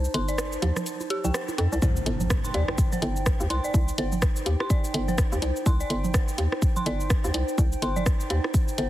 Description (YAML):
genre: minimal techno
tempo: 125 BPM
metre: 4/4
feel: swing 59% on 16ths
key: C dorian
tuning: A4 = 440 Hz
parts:
  - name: hollow knocking FM bass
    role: bass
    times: 0.0-8.9 s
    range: G1 to F2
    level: -27 LUFS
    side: equal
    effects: sidechain pumping
  - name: techno drum kit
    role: drums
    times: 0.0-8.9 s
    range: cabasa, hi-hat, rim click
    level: -32 LUFS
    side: equal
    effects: overdrive
  - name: warbly tape-like pad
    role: texture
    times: 0.0-8.9 s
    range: Eb4 to A5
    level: -34 LUFS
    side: right 1 dB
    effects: chorus, built-in reverb, sidechain pumping
  - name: dark detuned synth bell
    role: riff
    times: 0.1-8.8 s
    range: G4 to C6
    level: -34 LUFS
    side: equal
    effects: chorus, tremolo, sidechain pumping, digital delay
  - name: bongos and congas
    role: percussion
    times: 0.1-8.5 s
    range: none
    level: -33 LUFS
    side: right 4 dB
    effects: dub echo
  - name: electronic kick drum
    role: drums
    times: 1.8-8.7 s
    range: none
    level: -23 LUFS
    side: equal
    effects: none
  - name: impact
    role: sound effects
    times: 1.8-3.7 s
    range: none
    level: -34 LUFS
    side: equal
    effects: none
  - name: soft struck synth lead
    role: melody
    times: 4.5-4.7 s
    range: G4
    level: -37 LUFS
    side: left 6 dB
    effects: chorus, dub echo
room: light reverb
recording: heavily compressed radio sound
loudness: -23 LUFS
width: side -14 dB against mid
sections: 0.0-1.8 A section; 1.8-8.9 B section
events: break 0.0-1.8; drop 1.8-8.9; impact 1.8-3.7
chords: 0.0 Cm